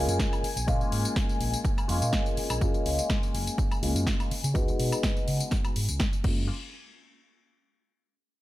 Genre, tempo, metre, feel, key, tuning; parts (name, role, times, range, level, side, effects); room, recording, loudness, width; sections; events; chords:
filtered disco house; 124 BPM; 4/4; straight; F# major; A4 = 440 Hz
warm grand piano; accompaniment; 0.0-6.4 s; G#3 to F#4; -32 LUFS; left 1 dB; phaser, sidechain pumping, low-pass filter
rich symphonic string section; sustained chords; 0.0-6.2 s; G#5; -39 LUFS; left 4 dB; sidechain pumping, low-pass filter
overdriven fingered electric bass; bass; 0.0-6.5 s; F#1 to C#3; -30 LUFS; equal; sidechain pumping, low-pass filter
house drum kit; drums; 0.1-6.3 s; crash cymbal, hi-hat, snare drum, tambourine, woodblock; -33 LUFS; left 1 dB; sidechain pumping on hats, studio reverb, sidechain pumping on perc, sidechain pumping on cymbals
electronic kick drum; drums; 0.2-6.3 s; -28 LUFS; equal; studio reverb
digital ambience; -25 LUFS; side -16 dB against mid
0.0-6.5 A section; 6.5-8.4 B section
filter sweep on fingered electric bass 0.0-6.5; filter sweep 0.0-6.5
0.4 A#m7; 2.6 F#maj9; 4.3 C#9sus4; 6.2 F#maj9; 6.5 N.C.